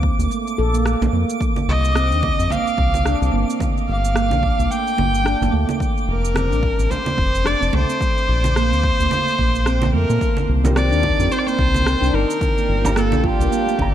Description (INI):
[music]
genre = organic downtempo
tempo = 109 BPM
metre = 4/4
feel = swing 57% on 16ths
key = C dorian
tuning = A4 = 439 Hz
[part]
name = handpan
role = arpeggios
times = 0.0-13.9 s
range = A3 to A4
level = -23 LUFS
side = right 3 dB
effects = digital delay
[part]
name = round analog bass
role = bass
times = 0.0-13.9 s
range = F1 to Bb2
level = -19 LUFS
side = left 1 dB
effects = sidechain pumping
[part]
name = electronic kick drum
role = drums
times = 0.0-13.9 s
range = none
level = -23 LUFS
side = left 1 dB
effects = overdrive
[part]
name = twinkling granular texture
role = texture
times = 0.0-10.2 s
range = D6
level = -32 LUFS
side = right 2 dB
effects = built-in reverb
[part]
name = electronic shaker, rim click and congas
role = drums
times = 0.2-13.9 s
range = none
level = -27 LUFS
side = right 2 dB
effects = overdrive
[part]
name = frame drum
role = percussion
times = 1.0-12.9 s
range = none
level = -26 LUFS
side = right 3 dB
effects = none
[part]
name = clear kamancheh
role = melody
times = 1.7-13.9 s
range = G4 to G5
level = -22 LUFS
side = equal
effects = tape echo
[part]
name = warm analog pad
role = sustained chords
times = 10.6-13.9 s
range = Eb3 to G5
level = -28 LUFS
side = right 1 dB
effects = chorus, sidechain pumping
[part]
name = felt-muted upright piano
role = accompaniment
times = 10.6-13.9 s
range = G3 to Bb5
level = -27 LUFS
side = right 2 dB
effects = sidechain pumping, digital delay
[sound]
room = light reverb, small room ambience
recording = none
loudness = -16 LUFS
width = side -11 dB against mid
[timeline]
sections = 0.0-10.2 A section; 10.2-13.9 B section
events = none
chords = 0.0 Bbmaj9; 1.4 Cm9; 3.6 Gm9; 5.8 F6; 8.0 Bbmaj9; 10.2 Cm9; 12.4 Gm9